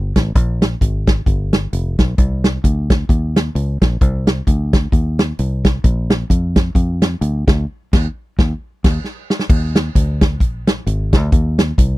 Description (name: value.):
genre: uptempo gospel.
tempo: 131 BPM.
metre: 4/4.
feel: swing 57% on 8ths.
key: Eb major.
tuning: A4 = 440 Hz.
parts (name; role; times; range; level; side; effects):
fingered electric bass; bass; 0.0-12.0 s; F1 to F2; -18 LUFS; equal; none.
natural country drum kit; drums; 0.2-11.9 s; crash cymbal, hi-hat, kick drum, snare drum; -14 LUFS; equal; none.
room: little or no reverb.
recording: dry, close 1970s-style studio recording.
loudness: -14 LUFS.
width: side -18 dB against mid.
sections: 0.0-9.5 A section; 9.5-12.0 B section.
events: band accent 7.7-9.5; drum fill 9.0-9.5.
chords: none.